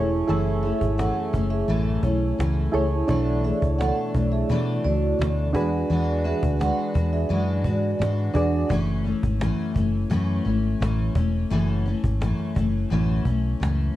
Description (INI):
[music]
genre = indie pop, bedroom pop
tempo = 86 BPM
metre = 4/4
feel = straight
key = F# minor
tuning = A4 = 439 Hz
[part]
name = vibraphone with soft mallets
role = second line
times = 0.0-8.5 s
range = D4 to F#5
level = -29 LUFS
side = right 3 dB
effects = wide subtle chorus, slapback echo
[part]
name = picked steel-string acoustic guitar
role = accompaniment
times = 0.0-14.0 s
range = F#2 to F#4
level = -26 LUFS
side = left 2 dB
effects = analog chorus, vibrato effect
[part]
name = soft electric-piano-like synth keys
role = accompaniment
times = 0.0-8.7 s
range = D4 to E5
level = -28 LUFS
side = right 2 dB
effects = chorus, cassette tape, plate reverb
[part]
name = vintage muted fingered electric bass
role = bass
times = 0.0-13.9 s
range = E1 to B2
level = -24 LUFS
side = equal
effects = none
[part]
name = cajon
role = drums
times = 0.3-13.8 s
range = none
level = -29 LUFS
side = equal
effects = none
[sound]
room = moderate small room ambience, RT60 0.5 s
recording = dark, warm production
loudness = -21 LUFS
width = side -14 dB against mid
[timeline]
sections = 0.0-8.7 A section; 8.7-14.0 B section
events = none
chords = 0.0 F#m7; 3.1 Bm11; 5.5 E9; 8.7 F#m7